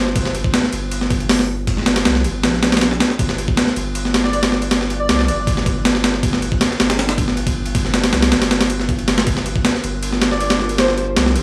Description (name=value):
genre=drum and bass, jungle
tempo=158 BPM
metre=4/4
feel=straight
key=G minor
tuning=A4 = 441 Hz
part: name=saturated sub bass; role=bass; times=0.0-11.4 s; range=G1 to C2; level=-24 LUFS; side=equal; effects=none
part: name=breakbeat sampler-style drum kit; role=drums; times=0.1-11.4 s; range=hi-hat, kick drum, ride cymbal, snare drum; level=-19 LUFS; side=equal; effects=overdrive
part: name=airy dreamy lead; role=melody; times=4.2-5.4, 10.3-10.9 s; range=C5 to D5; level=-26 LUFS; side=equal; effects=chorus, dub echo
part: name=warbly tape-like pad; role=sustained chords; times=9.6-11.4 s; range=D4 to Bb4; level=-30 LUFS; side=equal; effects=chorus, built-in reverb, phaser, vintage 12-bit sampler grit
room=digital ambience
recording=dry, gritty hardware recording, small room reverb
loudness=-17 LUFS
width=mono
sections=0.0-11.4 A section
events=none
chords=0.0 Gm7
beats=| 0.15 0.54 0.91 1.29 | 1.67 2.05 2.43 2.81 | 3.19 3.57 3.95 4.33 | 4.71 5.09 5.47 5.85 | 6.23 6.61 6.99 7.37 | 7.75 8.13 8.51 8.89 | 9.27 9.65 10.03 10.41 | 10.79 11.17